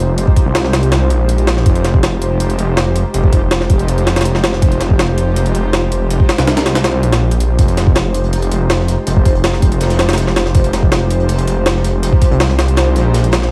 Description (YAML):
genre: drum and bass, jungle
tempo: 162 BPM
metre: 4/4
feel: straight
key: F minor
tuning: A4 = 441 Hz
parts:
  - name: airy breathy pad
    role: sustained chords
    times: 0.0-13.5 s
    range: Ab3 to C5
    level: -22 LUFS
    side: equal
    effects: chorus
  - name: detuned saw bass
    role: bass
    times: 0.0-13.5 s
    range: F1 to C2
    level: -17 LUFS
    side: equal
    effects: none
  - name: jungle sampler-style drum kit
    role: drums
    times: 0.2-13.5 s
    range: hi-hat, kick drum, snare drum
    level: -16 LUFS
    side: equal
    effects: overdrive, studio reverb
  - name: crunchy breakbeat drum kit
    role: drums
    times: 7.6-13.5 s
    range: hi-hat, snare drum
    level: -32 LUFS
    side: equal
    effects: none
room: studio reverb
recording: vinyl crackle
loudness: -14 LUFS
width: mono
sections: 0.0-13.5 A section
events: none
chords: 0.0 Fm7